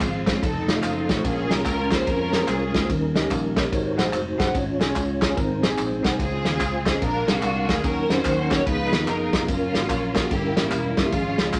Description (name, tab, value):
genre	uptempo gospel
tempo	146 BPM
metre	4/4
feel	swing 63% on 8ths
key	Db major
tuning	A4 = 440 Hz
part	clear studio string section	melody	0.0-2.9, 6.2-11.6 s	Ab3 to Db5	-29 LUFS	equal	none
part	bell-like tine electric piano	accompaniment	0.0-11.6 s	G2 to Bb5	-32 LUFS	equal	none
part	mellow tonewheel organ	sustained chords	0.0-11.6 s	Db3 to F5	-29 LUFS	equal	fast rotary speaker, chorus vibrato
part	fingered electric bass	bass	0.0-11.6 s	E1 to F2	-32 LUFS	equal	none
part	natural country drum kit	drums	0.0-11.6 s	kick drum, ride cymbal, snare drum	-28 LUFS	equal	none
part	handclaps and tambourine	percussion	0.0-11.6 s	none	-37 LUFS	equal	none
part	mellow electric guitar	second line	5.2-6.2 s	C4 to Db5	-34 LUFS	equal	none
room	wet studio reverb, RT60 0.5 s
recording	none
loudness	-23 LUFS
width	mono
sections	0.0-11.6 A section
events	none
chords	0.4 F7b13; 1.2 Bbm7; 2.9 Eb7; 3.7 Ab7; 4.5 Db/Ab; 5.4 Ab; 6.2 Dbmaj7; 7.0 Bb7; 7.8 Ebm7; 8.7 Db13; 9.5 Gbmaj7; 10.3 Gdim7